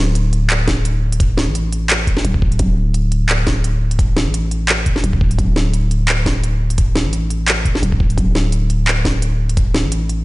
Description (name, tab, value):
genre	half-time drum and bass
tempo	172 BPM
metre	4/4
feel	swing 55% on 16ths, half-time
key	unclear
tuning	A4 = 440 Hz
part	growling 808-style bass	bass	0.0-10.2 s	D1 to A1	-17 LUFS	equal	none
part	organic electronic drum kit	drums	0.2-10.2 s	handclaps, hi-hat, snare drum	-19 LUFS	equal	overdrive
part	electronic kick drum	drums	0.7-9.6 s	none	-17 LUFS	equal	none
room	little or no reverb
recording	played on a big sound system in a bare room, stone room reverb, nothing above 10.9 kHz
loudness	-14 LUFS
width	side -20 dB against mid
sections	0.0-10.2 A section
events	none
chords	none